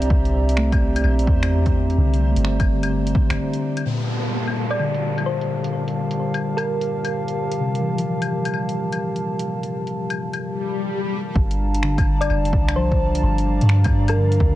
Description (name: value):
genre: future garage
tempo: 128 BPM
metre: 4/4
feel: swing 65% on 16ths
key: G dorian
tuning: A4 = 442 Hz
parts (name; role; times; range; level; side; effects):
- muted felt-like synth keys; accompaniment; 0.0-14.6 s; Bb2 to A3; -26 LUFS; left 2 dB; chorus, sidechain pumping, tape echo
- dark analog pad; sustained chords; 0.0-14.6 s; G3 to Bb5; -26 LUFS; right 1 dB; chorus, sidechain pumping
- soft 808-style bass; bass; 0.0-3.4, 11.4-14.6 s; F1 to G2; -19 LUFS; equal; sidechain pumping
- deep house drum kit; drums; 0.0-14.4 s; claves, finger snaps, hi-hat; -29 LUFS; left 4 dB; overdrive, low-pass filter on hats, soft clipping on snare, low-pass filter on snare, low-pass filter on perc
- backwards swelling texture; texture; 0.0-3.9, 11.4-14.6 s; C5 to D5; -40 LUFS; right 2 dB; built-in reverb
- electronic kick drum; drums; 0.1-3.3, 11.4-14.5 s; none; -20 LUFS; equal; overdrive
- downlifter and swell; sound effects; 3.9-11.4 s; none; -29 LUFS; left 2 dB; none
- thumb-piano-like synth pluck; melody; 4.7-7.2, 12.2-14.6 s; Bb4 to D5; -28 LUFS; equal; chorus, tape echo
room: digital ambience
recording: dense, heavily limited modern master, cassette tape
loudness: -18 LUFS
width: side -14 dB against mid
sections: 0.0-3.9 A section; 3.9-11.4 B section; 11.4-14.6 C section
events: filter sweep on synth keys 0.0-3.9; break 3.4-3.9; swell 10.5-11.4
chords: 0.0 C9; 3.9 Gm9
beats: | 0.10 0.57 1.04 1.51 | 1.98 2.45 2.92 3.38 | 3.85 4.32 4.79 5.26 | 5.73 6.20 6.67 7.13 | 7.60 8.07 8.54 9.01 | 9.48 9.95 10.42 10.88 | 11.35 11.82 12.29 12.76 | 13.23 13.70 14.17